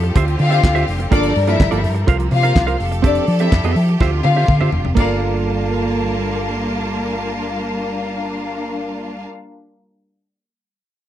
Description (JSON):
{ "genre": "disco", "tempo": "124 BPM", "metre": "4/4", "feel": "straight", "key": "G dorian", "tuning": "A4 = 440 Hz", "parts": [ { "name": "semi-hollow electric guitar", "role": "accompaniment", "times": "0.0-9.3 s", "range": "Bb3 to F5", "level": "-22 LUFS", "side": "right 8 dB", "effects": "none" }, { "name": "bright studio string section", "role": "sustained chords", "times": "0.0-9.2 s", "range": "C3 to A5", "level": "-24 LUFS", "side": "equal", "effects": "none" }, { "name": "hollow-body short-scale fingered electric bass", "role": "bass", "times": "0.0-9.2 s", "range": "F1 to F3", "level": "-19 LUFS", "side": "equal", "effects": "none" }, { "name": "damped 70s drum kit", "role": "drums", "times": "0.0-5.1 s", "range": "crash cymbal, handclaps, hi-hat, kick drum, snare drum, toms", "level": "-16 LUFS", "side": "equal", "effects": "none" }, { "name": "dark studio string section", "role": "second line", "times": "0.4-9.3 s", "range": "D4 to F5", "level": "-22 LUFS", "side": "left 4 dB", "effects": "none" } ], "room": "little or no reverb", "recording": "dry, close 1970s-style studio recording", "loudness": "-15 LUFS", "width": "side -12 dB against mid", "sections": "0.0-5.0 A section; 5.0-8.8 B section", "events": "drum fill 4.0-5.0", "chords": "0.2 Dm11; 1.1 Gm9; 2.1 C7sus4; 2.8 Fmaj9; 4.0 Dm11; 5.0 Gm9", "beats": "0.15 0.63 | 1.11 1.59 2.08 2.56 | 3.04 3.52 4.00 4.49 | 4.97 5.45 5.93 6.42 | 6.90 7.38 7.87 8.35" }